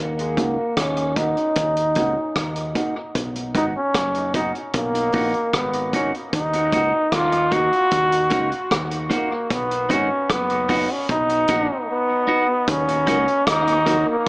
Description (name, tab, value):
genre	dub reggae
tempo	76 BPM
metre	4/4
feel	straight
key	Eb minor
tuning	A4 = 440 Hz
part	bright trombone	melody	0.0-14.3 s	Bb3 to Gb4	-20 LUFS	equal	low-pass filter, dub echo
part	fingered electric bass	bass	0.0-14.0 s	F#1 to Eb2	-28 LUFS	equal	none
part	vintage drum kit	drums	0.2-14.3 s	hi-hat, kick drum, rim click	-25 LUFS	equal	none
part	clean electric guitar	accompaniment	0.4-14.1 s	Bb3 to Gb4	-26 LUFS	right 1 dB	low-pass filter, dub echo
part	mellow tonewheel organ	accompaniment	12.9-14.2 s	Eb2 to Eb4	-28 LUFS	equal	overdrive, chorus vibrato, slow rotary speaker, dub echo
room	moderate spring reverb, RT60 2.3 s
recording	echo-heavy mix, small speaker sound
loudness	-18 LUFS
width	side -26 dB against mid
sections	0.0-12.7 A section; 12.7-14.3 B section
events	filter sweep 0.0-12.7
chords	0.0 Ebm; 3.2 B; 6.3 Ebm; 9.5 B; 12.7 Ebm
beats	0.77 1.57 2.36 | 3.15 3.95 4.74 5.54 | 6.33 7.12 7.92 8.71 | 9.51 10.30 11.09 11.89 | 12.68 13.47 14.26